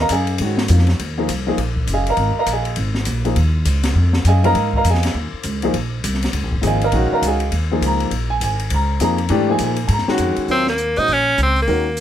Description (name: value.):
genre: modal jazz.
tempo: 202 BPM.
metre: 4/4.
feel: swing 62% on 8ths.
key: Eb dorian.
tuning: A4 = 440 Hz.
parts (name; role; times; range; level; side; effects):
warm grand piano; accompaniment; 0.0-11.9 s; Eb3 to Bb5; -19 LUFS; equal; none.
upright bass; bass; 0.0-12.0 s; Gb1 to Bb2; -19 LUFS; equal; none.
open jazz drum kit; drums; 0.1-12.0 s; hi-hat, kick drum, ride cymbal, rim click, snare drum; -25 LUFS; left 2 dB; none.
edgy tenor saxophone; melody; 10.5-12.0 s; Bb3 to Eb4; -16 LUFS; equal; none.
room: light reverb.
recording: close, detailed microphones.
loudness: -16 LUFS.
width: side -10 dB against mid.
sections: 0.0-10.5 A section; 10.5-12.0 B section.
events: none.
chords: 0.0 Eb9sus4; 10.5 Eb7sus4.